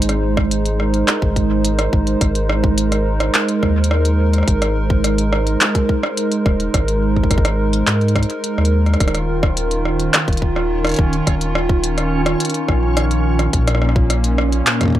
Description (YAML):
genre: IDM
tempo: 106 BPM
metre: 4/4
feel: straight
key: Ab major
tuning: A4 = 440 Hz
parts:
  - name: hollow soft pad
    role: sustained chords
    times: 0.0-15.0 s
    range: Bb2 to C5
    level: -19 LUFS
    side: right 1 dB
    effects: chorus
  - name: warm sub bass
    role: bass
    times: 0.0-14.6 s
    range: Eb1 to Ab2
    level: -19 LUFS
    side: equal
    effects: none
  - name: glitchy drum kit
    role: drums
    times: 0.0-14.9 s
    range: handclaps, hi-hat, rim click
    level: -20 LUFS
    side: equal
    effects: none
  - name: electronic kick drum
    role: drums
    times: 0.4-15.0 s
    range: none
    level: -17 LUFS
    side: equal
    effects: none
  - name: backwards swelling texture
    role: texture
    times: 9.6-15.0 s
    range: Db4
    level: -26 LUFS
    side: right 1 dB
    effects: built-in reverb
room: little or no reverb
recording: dry, gritty hardware recording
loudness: -14 LUFS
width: side -13 dB against mid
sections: 0.0-15.0 A section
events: none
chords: 0.0 Abadd9; 9.0 Ebsus2; 13.5 Bbm